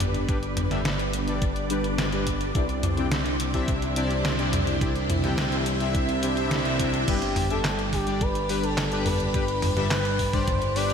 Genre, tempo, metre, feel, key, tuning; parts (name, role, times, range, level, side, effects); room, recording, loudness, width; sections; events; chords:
synthwave; 106 BPM; 4/4; straight; G major; A4 = 441 Hz
string machine, full ensemble; sustained chords; 0.0-10.9 s; G3 to E5; -31 LUFS; equal; ensemble chorus, sidechain pumping
fat analog bass; bass; 0.0-10.9 s; G1 to C2; -29 LUFS; equal; tube saturation
detuned 8-bit digital drum machine; drums; 0.0-10.9 s; crash cymbal, handclaps, hi-hat, snare drum, toms; -29 LUFS; equal; slapback echo
analog synth brass; stabs; 0.3-10.9 s; C3 to G5; -29 LUFS; left 2 dB; chorus, slapback echo, digital delay
electronic kick drum; drums; 0.3-10.6 s; -28 LUFS; equal
expressive portamento lead; melody; 7.1-10.9 s; G4 to D5; -28 LUFS; left 1 dB; chorus, slapback echo, digital delay
wet lush hall reverb, RT60 2.6 s; big arena sound; -22 LUFS; side -7 dB against mid
0.0-7.1 A section; 7.1-10.9 B section
filter sweep on string machine 0.0-7.1
0.0 G; 2.5 Cadd9; 7.1 G